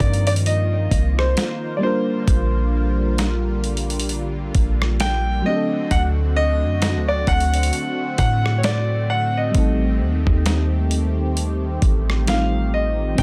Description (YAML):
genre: contemporary R&B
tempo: 66 BPM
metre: 4/4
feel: swing 58% on 16ths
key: unclear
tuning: A4 = 438 Hz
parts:
  - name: clear concert grand piano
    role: melody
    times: 0.0-13.2 s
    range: C5 to G5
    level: -26 LUFS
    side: equal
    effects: digital delay
  - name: mellow FM electric piano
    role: accompaniment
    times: 0.0-13.2 s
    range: F3 to C5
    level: -29 LUFS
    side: equal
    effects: chorus
  - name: warm analog pad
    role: sustained chords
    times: 0.0-13.2 s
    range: D3 to D5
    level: -31 LUFS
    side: equal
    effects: chorus
  - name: warm 808-style bass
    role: bass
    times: 0.0-13.2 s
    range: A1 to A2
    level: -23 LUFS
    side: equal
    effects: none
  - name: dusty soul sampler-style drum kit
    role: drums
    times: 0.0-13.2 s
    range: hi-hat, kick drum, rim click, snare drum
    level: -24 LUFS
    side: equal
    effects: none
room: digital ambience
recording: none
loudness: -20 LUFS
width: mono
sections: 0.0-13.2 A section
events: none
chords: 0.0 Cm7; 1.8 Gm7/Bb; 5.5 D7; 9.5 Am7b5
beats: 0.46 1.37 | 2.27 3.18 4.09 5.00 | 5.91 6.82 7.73 8.64 | 9.55 10.46 11.37 12.28 | 13.18